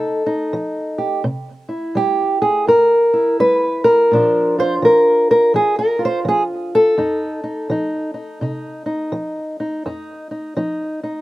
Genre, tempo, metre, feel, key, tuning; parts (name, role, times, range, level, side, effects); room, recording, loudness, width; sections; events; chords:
acoustic country blues, solo or duo; 84 BPM; 4/4; swing 63% on 8ths; F mixolydian; A4 = 439 Hz
fingerpicked old ladder-braced acoustic guitar; solo; 0.0-11.2 s; F2 to C5; -15 LUFS; equal
little or no reverb; recorded outdoors, with no room sound; -15 LUFS; side -16 dB against mid
0.0-11.2 A section
0.0 F7; 1.3 C7; 4.1 Bb; 7.0 F7